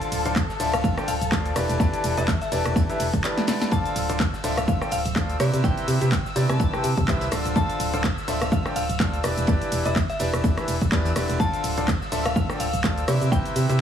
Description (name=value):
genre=piano house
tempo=125 BPM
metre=4/4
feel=swing 57% on 16ths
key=D dorian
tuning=A4 = 440 Hz
part: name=glassy synth bell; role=melody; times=0.0-13.8 s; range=D5 to A5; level=-32 LUFS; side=left 2 dB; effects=chorus, tremolo, dub echo
part: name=muted chamber violin section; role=sustained chords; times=0.0-13.8 s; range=A4 to E6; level=-34 LUFS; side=left 4 dB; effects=sidechain pumping
part: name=bright grand piano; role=riff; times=0.0-13.8 s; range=C3 to G5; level=-27 LUFS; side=equal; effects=sidechain pumping, dub echo
part: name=house drum kit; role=drums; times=0.0-13.8 s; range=handclaps, hi-hat, ride cymbal, rim click, shaker, snare drum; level=-30 LUFS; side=equal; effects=studio ambience
part: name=organ-like FM bass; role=bass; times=0.1-13.8 s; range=D1 to C3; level=-26 LUFS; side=right 1 dB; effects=sidechain pumping
part: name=damped 70s drum kit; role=drums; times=0.1-13.7 s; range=hi-hat, snare drum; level=-41 LUFS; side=right 5 dB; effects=none
part: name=electronic kick drum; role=drums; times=0.4-13.4 s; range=none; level=-25 LUFS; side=equal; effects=studio ambience
room=studio ambience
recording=heavily compressed radio sound, multiband compression, small room ambience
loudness=-21 LUFS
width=side -9 dB against mid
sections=0.0-13.8 A section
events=drum fill 3.4-3.7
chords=0.0 Dm7; 1.6 Em7; 3.7 Dm7; 5.4 Cmaj7; 7.3 Dm7; 9.2 Em7; 11.4 Dm7; 13.1 Cmaj7